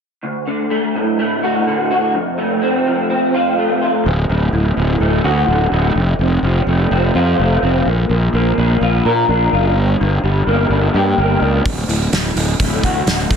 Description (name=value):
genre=quiet-loud alternative rock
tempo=126 BPM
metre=4/4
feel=straight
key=unclear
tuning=A4 = 439 Hz
part: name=electric guitar through a small old amp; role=arpeggios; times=0.2-13.4 s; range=D2 to Bb4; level=-16 LUFS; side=equal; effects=ensemble chorus, slapback echo
part: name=fuzz fingered electric bass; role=bass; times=4.1-13.4 s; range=D1 to Bb2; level=-16 LUFS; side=equal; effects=overdrive
part: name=loose indie drum kit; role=drums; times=11.7-13.4 s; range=hi-hat, kick drum, snare drum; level=-18 LUFS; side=equal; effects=none
room=light reverb, small room ambience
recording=dense, heavily limited modern master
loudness=-13 LUFS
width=side -6 dB against mid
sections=0.2-4.1 A section; 4.1-13.4 B section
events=none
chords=0.2 D; 2.1 F; 4.1 D; 6.0 F; 7.9 Bb; 9.8 Gm; 11.7 D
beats=| 0.23 0.71 1.19 1.67 | 2.15 2.63 3.10 3.58 | 4.06 4.54 5.01 5.49 | 5.96 6.44 6.92 7.39 | 7.87 8.34 8.81 9.29 | 9.76 10.23 10.71 11.18 | 11.65 12.12 12.60 13.07